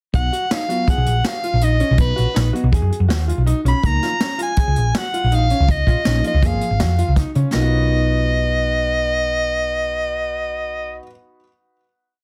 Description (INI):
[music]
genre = progressive instrumental, band music in an uneven meter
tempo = 162 BPM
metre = 5/4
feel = straight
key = B lydian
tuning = A4 = 440 Hz
[part]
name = clear soprano saxophone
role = melody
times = 0.1-11.0 s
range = B4 to B5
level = -24 LUFS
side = equal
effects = none
[part]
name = hollow-body jazz guitar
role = accompaniment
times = 0.1-11.0 s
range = E#3 to A#4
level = -28 LUFS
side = equal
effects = double-tracked
[part]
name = hollow-body short-scale picked electric bass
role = bass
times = 0.1-11.0 s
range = G#1 to C#3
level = -21 LUFS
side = equal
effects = none
[part]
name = jazz brush drum kit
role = drums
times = 0.1-7.6 s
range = hi-hat, kick drum, snare drum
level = -23 LUFS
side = equal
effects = none
[part]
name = clear concert grand piano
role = arpeggios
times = 0.3-11.1 s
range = B3 to B4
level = -29 LUFS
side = equal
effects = digital delay
[sound]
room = light reverb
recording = dense, heavily limited modern master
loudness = -18 LUFS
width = mono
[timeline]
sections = 0.1-7.5 groove; 7.5-11.2 final chord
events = none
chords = 0.1 Bmaj7; 3.8 C#; 7.5 Bmaj7